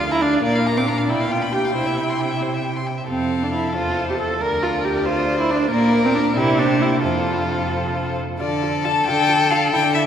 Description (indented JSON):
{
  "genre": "quick classical-period movement for string quartet",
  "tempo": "91 BPM (dotted quarters)",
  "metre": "6/8",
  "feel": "straight",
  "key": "F major",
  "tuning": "A4 = 439 Hz",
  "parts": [
    { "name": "rich violin", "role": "melody", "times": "0.0-10.0 s", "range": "C5 to A5", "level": "-25 LUFS", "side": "left 6 dB", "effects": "none" },
    { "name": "rich violin", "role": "second line", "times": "0.0-10.1 s", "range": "G4 to D6", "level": "-24 LUFS", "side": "left 2 dB", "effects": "none" },
    { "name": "warm viola", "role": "accompaniment", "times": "0.0-10.0 s", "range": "Bb3 to Bb4", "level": "-21 LUFS", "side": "right 1 dB", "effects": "none" },
    { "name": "clear cello", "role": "bass", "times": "0.0-10.1 s", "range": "D2 to D3", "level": "-25 LUFS", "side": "right 3 dB", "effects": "none" }
  ],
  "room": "wet cathedral reverb, RT60 4.8 s",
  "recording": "recorded in a church or concert hall",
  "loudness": "-17 LUFS",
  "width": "side -8 dB against mid",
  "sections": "0.0-8.4 A section; 8.4-10.1 B section",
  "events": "none",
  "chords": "0.4 Bb; 1.1 G7/B; 1.8 C; 3.1 F; 4.4 Bb/D; 5.7 Bb; 6.4 C5; 7.0 F; 8.4 Dm",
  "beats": "| 0.43 1.09 | 1.75 2.42 | 3.09 3.75 | 4.41 5.06 | 5.71 6.37 | 7.04 7.72 | 8.40 9.07 | 9.72"
}